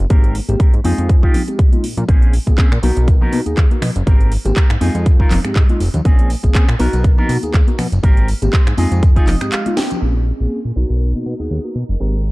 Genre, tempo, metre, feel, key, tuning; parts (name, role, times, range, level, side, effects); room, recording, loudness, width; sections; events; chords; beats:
filtered disco house; 121 BPM; 4/4; swing 55% on 16ths; Bb dorian; A4 = 440 Hz
fat analog bass; bass; 0.0-12.3 s; F1 to B2; -17 LUFS; equal; sidechain pumping, low-pass filter
mellow tine electric piano; accompaniment; 0.1-12.1 s; Ab3 to A#4; -23 LUFS; equal; phaser, sidechain pumping, low-pass filter
electric guitar with an envelope filter; riff; 0.1-12.3 s; B3 to G5; -27 LUFS; right 1 dB; sidechain pumping, low-pass filter
electronic kick drum; drums; 0.1-9.3 s; -12 LUFS; equal
house drum kit; drums; 0.1-10.0 s; finger snaps, handclaps, hi-hat, snare drum; -25 LUFS; right 1 dB; sidechain pumping on hats
tambourine and congas; percussion; 0.1-10.0 s; -26 LUFS; left 4 dB; sidechain pumping on perc, low-pass filter on perc
phased string machine; sustained chords; 10.0-12.3 s; Ab4 to C6; -39 LUFS; right 1 dB; ensemble chorus, phaser, vintage 12-bit sampler grit, sidechain pumping, low-pass filter
muted trumpet section; melody; 10.3-11.1 s; Db5 to Eb5; -52 LUFS; left 2 dB
little or no reverb; dark, warm production; -12 LUFS; side -21 dB against mid
0.0-10.0 A section; 10.0-12.3 B section
clean electric guitar fill 9.0-10.0; break 9.5-10.0; drum fill 9.8; band accent 9.8; filter sweep 10.0-12.3
0.1 Abmaj9; 0.8 Fm7; 2.1 Bbm9; 2.8 Bmaj7; 4.1 Abmaj9; 4.8 Fm7; 6.1 Bbm9; 6.8 Bmaj7; 8.0 Abmaj9; 8.8 Fm7; 10.0 Bbm9; 10.8 Bmaj7
| 0.10 0.60 1.09 1.59 | 2.09 2.58 3.08 3.58 | 4.07 4.57 5.06 5.56 | 6.05 6.55 7.05 7.54 | 8.04 8.53 9.03 9.53 | 10.02 10.52 11.01 11.51 | 12.00